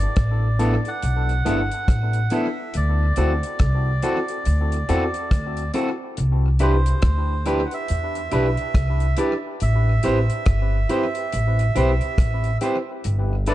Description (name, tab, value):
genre	lovers rock reggae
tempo	70 BPM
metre	4/4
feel	swing 61% on 16ths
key	G major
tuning	A4 = 441 Hz
part	melodica	melody	0.0-13.5 s	C5 to F#5	-28 LUFS	right 3 dB	tape echo
part	upright bass	bass	0.0-13.5 s	G1 to E2	-20 LUFS	equal	none
part	damped 70s drum kit	drums	0.0-13.5 s	hi-hat, kick drum, rim click	-24 LUFS	equal	tape echo
part	overdriven tine electric piano	accompaniment	0.6-13.5 s	B3 to B4	-28 LUFS	left 3 dB	tape echo
part	electric guitar at the edge of break-up	stabs	0.6-13.5 s	B3 to C5	-27 LUFS	right 3 dB	none
room	light reverb, studio reverb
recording	dark, warm production, nothing above 10.3 kHz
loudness	-19 LUFS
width	side -14 dB against mid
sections	0.0-13.5 A section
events	none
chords	0.0 G69 (rootless); 2.7 D7; 6.2 Cmaj7; 9.6 Am7; 13.0 G69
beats	0.16 1.02 1.88 | 2.74 3.60 4.46 5.31 | 6.17 7.03 7.89 8.75 | 9.61 10.47 11.32 12.18 | 13.04